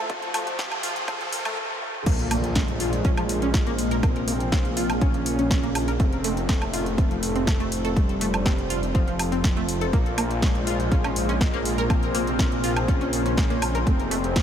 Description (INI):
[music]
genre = melodic techno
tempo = 122 BPM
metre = 4/4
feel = straight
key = unclear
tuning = A4 = 440 Hz
[part]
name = fat analog lead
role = melody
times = 0.0-14.4 s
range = F3 to Db4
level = -30 LUFS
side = equal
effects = wide subtle chorus, sidechain pumping, analog delay
[part]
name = deep dark ambient pad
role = sustained chords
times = 0.0-14.4 s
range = F3 to F5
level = -31 LUFS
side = left 1 dB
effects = chorus, built-in reverb, sidechain pumping
[part]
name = riser and impact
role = sound effects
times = 0.0-4.0 s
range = none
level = -33 LUFS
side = equal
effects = none
[part]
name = tight sequenced synth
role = arpeggios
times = 0.1-14.4 s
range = F3 to Bb4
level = -30 LUFS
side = equal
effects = chorus, sidechain pumping, ping-pong delay
[part]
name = deep house drum kit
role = drums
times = 0.1-14.4 s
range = crash cymbal, hi-hat, snare drum, toms, woodblock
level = -30 LUFS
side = right 1 dB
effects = overdrive, sidechain pumping on hats, high-pass filter on hats, sidechain pumping on perc, high-pass filter on perc, high-pass filter on snare, sidechain pumping on toms, high-pass filter on toms, sidechain pumping on cymbals, high-pass filter on cymbals, high-pass filter on room
[part]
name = electronic kick drum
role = drums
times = 0.1-14.4 s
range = none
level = -22 LUFS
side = equal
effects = overdrive
[part]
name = swelling detuned saw bass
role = bass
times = 2.1-14.4 s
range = F1 to Bb1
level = -28 LUFS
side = equal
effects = tube saturation, sidechain pumping
[sound]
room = moderate huge ambient reverb, RT60 8.4 s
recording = dreamy mix soaked in reverb, high-pass filter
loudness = -21 LUFS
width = side -9 dB against mid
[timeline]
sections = 0.0-2.1 A section; 2.1-14.4 B section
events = build-up 0.0-2.1; riser 0.0-1.6; filter sweep on analog synth lead 0.0-2.1; filter sweep on ambient pad 0.0-2.1; drum fill 1.8; drop 2.1-14.4; impact 2.1-4.0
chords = 0.0 F; 2.1 Bbm7; 6.0 F; 9.9 Bbm7; 13.9 F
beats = | 0.10 0.59 1.08 1.57 | 2.06 2.56 3.05 3.54 | 4.03 4.52 5.01 5.51 | 6.00 6.49 6.98 7.47 | 7.97 8.46 8.95 9.44 | 9.93 10.43 10.92 11.41 | 11.90 12.39 12.88 13.38 | 13.87 14.36